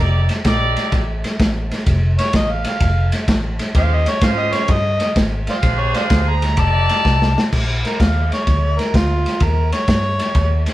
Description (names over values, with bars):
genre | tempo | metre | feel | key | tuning
electric blues shuffle | 127 BPM | 4/4 | swing 67% on 8ths | unclear | A4 = 441 Hz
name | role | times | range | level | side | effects
warm horn section | stabs | 0.0-7.4 s | Db4 to D5 | -22 LUFS | right 3 dB | none
vintage muted fingered electric bass | bass | 0.0-10.7 s | F1 to Ab2 | -18 LUFS | equal | none
crunchy breakbeat drum kit | drums | 0.3-10.7 s | crash cymbal, kick drum, ride cymbal, snare drum | -19 LUFS | equal | none
overdriven harmonica | melody | 2.2-10.6 s | F4 to Bb5 | -21 LUFS | left 1 dB | none
room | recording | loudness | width
light reverb | band playing live in one room | -15 LUFS | side -15 dB against mid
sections
0.0-7.5 A section; 7.5-10.7 A section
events
harmonica solo 0.0-7.5, 7.5-10.7; drum fill 7.0-7.5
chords
0.0 F13; 3.7 Eb13; 5.6 Bb13; 6.6 F13; 7.5 Bb; 9.4 Eb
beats
0.45 0.92 1.39 | 1.86 2.33 2.81 3.28 | 3.75 4.22 4.69 5.16 | 5.63 6.10 6.57 7.04 | 7.52 7.99 8.46 8.93 | 9.40 9.88 10.35